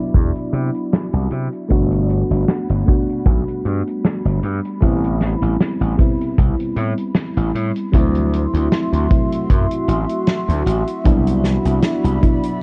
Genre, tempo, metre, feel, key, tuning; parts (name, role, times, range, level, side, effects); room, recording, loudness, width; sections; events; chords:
vaporwave; 77 BPM; 4/4; swing 54% on 16ths; G major; A4 = 440 Hz
mellow FM electric piano; accompaniment; 0.0-12.6 s; F#3 to F#4; -24 LUFS; equal; analog chorus, cassette tape, analog delay
warbly tape-like pad; sustained chords; 0.0-12.6 s; G3 to C6; -30 LUFS; equal; chorus, built-in reverb, phaser
gritty slap bass; bass; 0.1-12.2 s; G1 to C3; -21 LUFS; equal; overdrive
kick drum; drums; 0.1-12.4 s; -19 LUFS; equal; vintage 12-bit sampler grit
natural country drum kit; drums; 0.1-12.6 s; hi-hat, snare drum; -23 LUFS; equal; vintage 12-bit sampler grit
small room ambience; dark, warm production, cassette tape, low-pass filter; -18 LUFS; mono
0.0-12.6 A section
filter sweep on ambient pad 0.0-12.6; filter sweep 0.0-12.6
0.0 Cmaj9#11; 1.7 Gmaj7; 4.8 Am9; 7.9 D9; 11.1 Cmaj9#11